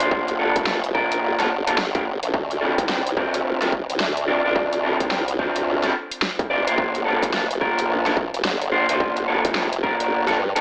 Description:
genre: glitch hop.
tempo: 108 BPM.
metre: 4/4.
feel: swing 61% on 16ths.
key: unclear.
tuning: A4 = 441 Hz.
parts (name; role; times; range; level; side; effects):
electric guitar through a small old amp; stabs; 0.0-10.6 s; Bb3 to D5; -25 LUFS; equal; sidechain pumping, tape echo.
formant-sweep wobble bass; bass; 0.0-10.6 s; F1 to G2; -26 LUFS; equal; chorus, overdrive.
dubstep drum kit; drums; 0.0-10.6 s; hi-hat, rim click, snare drum; -28 LUFS; equal; none.
electronic kick drum; drums; 0.1-10.0 s; none; -29 LUFS; equal; distortion.
room: digital ambience.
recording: dry, gritty hardware recording, AM radio sound.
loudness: -22 LUFS.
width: mono.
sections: 0.0-10.6 A section.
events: kick drops out 10.1-10.6.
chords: 0.0 Gm9; 2.3 Dm7; 6.8 Gm9.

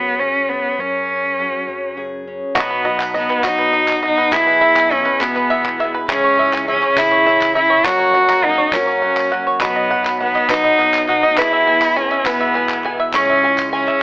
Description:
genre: indie folk with a building arrangement.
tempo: 68 BPM (dotted quarters).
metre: 6/8.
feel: straight.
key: B major.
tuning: A4 = 439 Hz.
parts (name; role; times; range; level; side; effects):
warm cello; melody; 0.0-14.0 s; B3 to F#4; -15 LUFS; equal; none.
fingerpicked steel-string acoustic guitar; accompaniment; 0.0-2.6 s; F#2 to G#4; -25 LUFS; left 1 dB; none.
fingered electric bass; bass; 0.0-13.9 s; B1 to F#3; -36 LUFS; equal; none.
warm brass ensemble; sustained chords; 2.5-14.0 s; C#3 to G#4; -30 LUFS; equal; none.
bluegrass banjo; arpeggios; 2.5-14.0 s; F#4 to C6; -20 LUFS; right 1 dB; slapback echo.
picked twelve-string acoustic guitar; accompaniment; 2.6-14.0 s; F#2 to G#4; -25 LUFS; left 1 dB; lush chorus.
warm upright piano; accompaniment; 2.6-14.0 s; F#1 to E5; -31 LUFS; right 1 dB; none.
group handclap; percussion; 2.6-14.0 s; none; -23 LUFS; left 1 dB; none.
tambourine; percussion; 2.6-13.8 s; none; -38 LUFS; right 1 dB; none.
room: light reverb, small room ambience.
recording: telephone sound.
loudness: -13 LUFS.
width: side -22 dB against mid.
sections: 0.0-2.6 A section; 2.6-14.0 B section.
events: none.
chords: 0.0 F#sus2; 2.6 B; 4.3 E/B; 6.1 C#m; 7.9 F#; 9.6 B; 11.4 E/B; 13.1 C#m.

